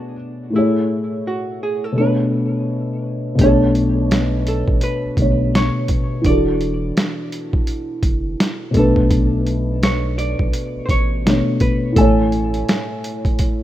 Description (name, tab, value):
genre	lo-fi hip hop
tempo	84 BPM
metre	4/4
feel	swing 60% on 16ths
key	B dorian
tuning	A4 = 440 Hz
part	archtop guitar, miked and amplified	melody	0.0-13.6 s	D4 to D5	-26 LUFS	right 1 dB	low-pass filter, tape echo
part	felt-muted upright piano	accompaniment	0.0-13.6 s	A2 to G#5	-18 LUFS	left 1 dB	cassette tape, low-pass filter
part	saturated sub bass	bass	3.4-12.6 s	E1 to B1	-23 LUFS	equal	none
part	boom bap sampler-style drum kit	drums	3.4-13.6 s	hi-hat, kick drum, snare drum	-18 LUFS	equal	none
room	digital ambience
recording	rough home demo mix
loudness	-16 LUFS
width	side -13 dB against mid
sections	0.0-3.4 A section; 3.4-13.6 B section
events	none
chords	0.0 Bm9; 0.5 Amaj7; 2.0 Bm9; 6.2 E9sus4; 8.7 Bm9; 12.0 Amaj7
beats	| 0.53 1.25 1.96 2.68 | 3.39 4.11 4.82 5.53 | 6.25 6.96 7.68 8.39 | 9.11 9.82 10.53 11.25 | 11.96 12.68 13.39